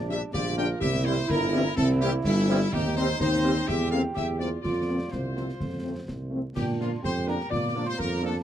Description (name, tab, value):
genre	military-style march for wind band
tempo	125 BPM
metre	2/4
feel	straight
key	Bb major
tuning	A4 = 441 Hz
part	clear euphonium	second line	0.0-8.4 s	C4 to G4	-35 LUFS	right 4 dB	none
part	mellow large flute ensemble	second line	0.0-8.4 s	E4 to D6	-36 LUFS	left 3 dB	none
part	warm tuba	bass	0.0-8.4 s	G1 to Bb2	-28 LUFS	right 2 dB	none
part	bright trumpet section	melody	0.1-8.4 s	E4 to G5	-34 LUFS	left 2 dB	none
part	mellow woodwind section	second line	0.1-8.3 s	G3 to D5	-31 LUFS	left 1 dB	none
part	dark French horn section	accompaniment	0.1-8.3 s	D3 to D4+22c	-31 LUFS	left 4 dB	none
part	mellow trombone section	sustained chords	0.1-8.3 s	G3 to E4	-36 LUFS	right 2 dB	none
part	concert snare drum, concert bass drum and clash cymbals	drums	0.1-8.4 s	none	-34 LUFS	equal	none
room	light reverb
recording	vinyl crackle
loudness	-24 LUFS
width	side -10 dB against mid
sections	0.0-6.6 A section; 6.6-8.4 B section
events	none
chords	0.0 Gm/Bb; 0.8 C7; 2.7 Cm/Eb; 3.7 C7/E; 4.6 Fsus4; 5.6 F; 6.6 Bb